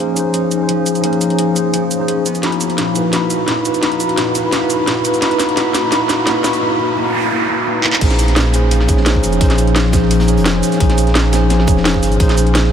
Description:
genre	liquid drum and bass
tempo	172 BPM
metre	4/4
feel	straight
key	unclear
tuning	A4 = 437 Hz
part	mellow tine electric piano	accompaniment	0.0-12.7 s	Db4 to B5	-17 LUFS	right 1 dB	medium stereo tremolo, low-pass filter, ping-pong delay
part	concert harp	arpeggios	0.0-12.7 s	Bb2 to Eb4	-20 LUFS	left 6 dB	low-pass filter, ping-pong delay
part	drum and bass drum kit	drums	0.2-12.6 s	crash cymbal, handclaps, hi-hat, shaker, snare drum	-19 LUFS	right 1 dB	none
part	noise sweep	sound effects	6.9-8.0 s	none	-25 LUFS	right 5 dB	none
part	warm sub bass	bass	8.0-12.7 s	F1 to Bb1	-15 LUFS	right 1 dB	none
part	crunchy breakbeat drum kit	drums	8.0-12.7 s	hi-hat, snare drum	-27 LUFS	right 2 dB	none
part	electronic kick drum	drums	8.0-12.3 s	none	-15 LUFS	right 1 dB	none
room	wet huge ambient reverb, RT60 7.6 s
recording	dreamy mix soaked in reverb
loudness	-12 LUFS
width	side -8 dB against mid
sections	0.0-8.0 A section; 8.0-12.7 B section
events	build-up 0.0-8.0; filter sweep on tine electric piano 0.0-8.0; filter sweep on harp 0.0-8.0; drum fill 2.4-6.6, 7.8; noise sweep 6.9-8.0; drop 8.0-12.7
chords	0.0 Bbm11; 2.3 Badd11; 8.0 Bbm11

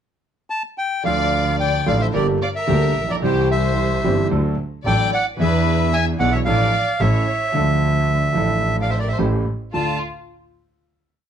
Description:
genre	tango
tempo	111 BPM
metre	4/4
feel	rubato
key	D minor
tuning	A4 = 438 Hz
part	bandoneon	melody	0.5-10.0 s	C5 to A5	-22 LUFS	right 1 dB	none
part	warm concert grand piano	accompaniment	1.0-10.0 s	G1 to A4	-21 LUFS	right 1 dB	none
part	rich studio violin section	second line	1.1-10.0 s	F4 to E5	-26 LUFS	left 3 dB	none
part	clear double bass	bass	1.1-10.0 s	G1 to E2	-22 LUFS	equal	none
room	moderate studio reverb, RT60 0.7 s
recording	none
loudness	-17 LUFS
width	side -8 dB against mid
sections	0.0-1.1 pickup bar; 1.1-9.7 A section; 9.7-11.3 final chord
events	none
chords	0.0 N.C.; 1.1 Dm; 2.1 Gm; 3.2 C; 4.3 D; 5.4 E7; 6.5 Dm/A; 7.0 A; 7.5 Dm; 9.2 A7; 9.7 Dm

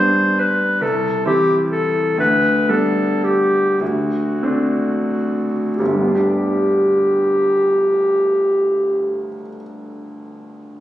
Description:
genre	classical, romantic duo for clarinet and grand piano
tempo	28-48 BPM (dotted quarters)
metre	6/8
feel	rubato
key	G major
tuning	A4 = 440 Hz
part	clear clarinet	melody	0.0-9.2 s	F#4 to C5	-17 LUFS	equal	none
part	bright concert grand piano	accompaniment	0.0-10.8 s	G1 to G4	-20 LUFS	equal	none
room	moderate recital hall reverb, RT60 1.3 s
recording	recorded on a phone in the room, club reverb, compression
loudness	-15 LUFS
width	side -13 dB against mid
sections	0.0-5.8 A section; 5.8-9.7 B section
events	slowing down 0.0-5.8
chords	0.0 G; 0.8 C6; 2.2 G/D; 3.8 D7; 5.8 G

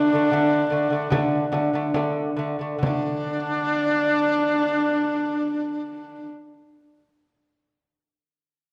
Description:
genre	mongolian traditional, Mongolian folk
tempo	66-79 BPM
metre	4/4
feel	straight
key	unclear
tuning	A4 = 444 Hz
part	rich horsehead fiddle	melody	0.0-6.3 s	D4	-28 LUFS	equal	none
part	large dizi	second line	0.0-6.3 s	D4	-28 LUFS	equal	none
part	lute	arpeggios	0.0-6.3 s	D3 to A3	-27 LUFS	equal	none
part	frame drum	percussion	0.3-3.2 s	none	-31 LUFS	equal	none
room	wet recital hall reverb, RT60 1.7 s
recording	none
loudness	-23 LUFS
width	mono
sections	0.0-2.8 A section; 2.8-6.5 B section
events	slowing down 0.0-2.8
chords	0.0 D5

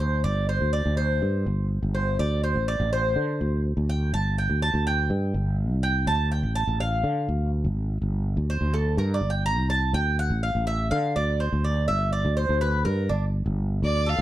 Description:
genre	latin, Cuban son and guajira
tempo	124 BPM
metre	4/4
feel	straight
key	unclear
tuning	A4 = 441 Hz
part	Cuban tres	arpeggios	0.0-14.2 s	D4 to Bb5	-27 LUFS	right 1 dB	none
part	sustaining fretless electric bass	bass	0.0-14.2 s	G1 to D3	-24 LUFS	equal	none
part	warm violin	melody	13.8-14.2 s	D5 to F5	-25 LUFS	equal	plate reverb
room	light reverb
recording	dark, warm production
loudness	-22 LUFS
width	side -14 dB against mid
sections	0.0-13.8 A section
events	Cuban tres solo 0.0-13.8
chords	0.2 G5; 2.2 D5; 4.1 G5; 6.1 Dm; 8.0 G5; 9.9 D5; 11.9 G5

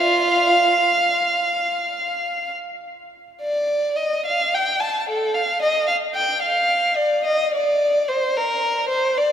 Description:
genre	classical, baroque-style suite movement for unaccompanied violin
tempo	68-75 BPM (dotted quarters)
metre	12/8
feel	rubato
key	unclear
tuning	A4 = 439 Hz
part	warm violin	solo	0.0-9.3 s	F4 to A5	-18 LUFS	equal	none
room	wet church reverb, RT60 4.1 s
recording	none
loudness	-18 LUFS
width	side -9 dB against mid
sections	0.0-3.4 A section; 3.4-9.3 A section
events	none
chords	none

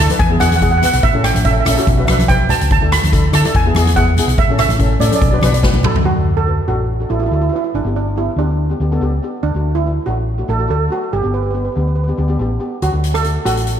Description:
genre	calypso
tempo	142 BPM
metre	4/4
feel	swing 54% on 16ths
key	D major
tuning	A4 = 445 Hz
part	steel pan	melody	0.0-13.8 s	D4 to B5	-19 LUFS	right 4 dB	slapback echo, digital delay
part	steel pan	accompaniment	0.0-13.8 s	A3 to B4	-22 LUFS	left 4 dB	slapback echo
part	hollow-body short-scale fingered electric bass	bass	0.0-13.8 s	G1 to D3	-17 LUFS	equal	none
part	street-band drum kit	drums	0.1-6.0, 12.8-13.8 s	hi-hat, kick drum, rim click, snare drum, toms	-17 LUFS	equal	none
part	congas	percussion	0.1-5.9 s	none	-24 LUFS	right 1 dB	none
room	light reverb, studio ambience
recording	none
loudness	-13 LUFS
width	side -9 dB against mid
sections	0.0-6.1 A section; 6.1-13.8 B section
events	drum fill 5.6-6.1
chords	0.2 E; 1.0 A; 1.9 Bm; 2.7 Dsus2; 3.5 E; 4.4 A; 5.2 Bm; 6.1 D; 7.7 G; 9.4 D; 11.1 G; 12.8 D

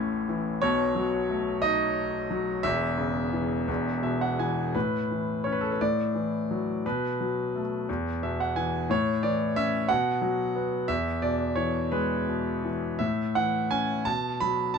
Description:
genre	classical, lyrical solo piano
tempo	56-61 BPM (dotted quarters)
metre	6/8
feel	rubato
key	A major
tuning	A4 = 440 Hz
part	bright grand piano	solo	0.0-14.8 s	E1 to C#6	-25 LUFS	equal	none
room	light reverb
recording	dark, warm production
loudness	-25 LUFS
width	side -6 dB against mid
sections	0.0-4.8 A section; 4.8-14.8 B section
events	grand piano fill 3.7-4.8, 7.9-8.9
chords	0.0 A; 0.6 B7; 2.6 C#m/E; 3.7 E5; 4.8 Aadd9; 5.8 Dadd9/A; 6.8 B5; 7.9 E5; 8.9 A; 9.9 B5; 10.9 E; 13.0 A; 14.1 B5

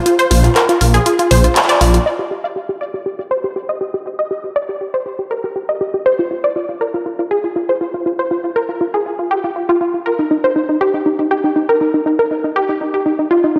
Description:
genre	progressive house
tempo	120 BPM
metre	4/4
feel	straight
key	unclear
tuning	A4 = 440 Hz
part	unison pluck	arpeggios	0.0-13.6 s	Eb4 to F5	-17 LUFS	equal	delay
part	deep house drum kit	drums	0.1-2.0 s	handclaps, hi-hat	-20 LUFS	equal	none
part	dark detuned saw bass	bass	0.3-2.0 s	Bb1	-14 LUFS	equal	none
room	wet lush hall reverb, RT60 1.7 s, digital ambience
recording	dreamy mix soaked in reverb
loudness	-16 LUFS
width	mono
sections	0.0-2.1 A section; 2.1-13.6 B section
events	band accent 1.6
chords	0.0 Bb5; 2.1 N.C.

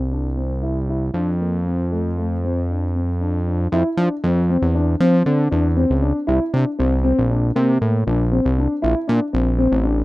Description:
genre	progressive instrumental, band music in an uneven meter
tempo	234 BPM (eighths)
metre	5/8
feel	straight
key	unclear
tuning	A4 = 440 Hz
part	fat analog bass	bass	0.0-10.0 s	A1 to F3	-18 LUFS	equal	none
part	dark concert grand piano	arpeggios	0.1-10.0 s	A3 to E4	-21 LUFS	left 2 dB	none
room	studio ambience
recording	rough home demo mix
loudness	-17 LUFS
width	side -18 dB against mid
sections	0.0-3.7 A section; 3.7-10.0 B section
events	none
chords	0.0 Cadd9; 1.1 F5; 6.3 C7sus2; 8.8 Bbmaj7

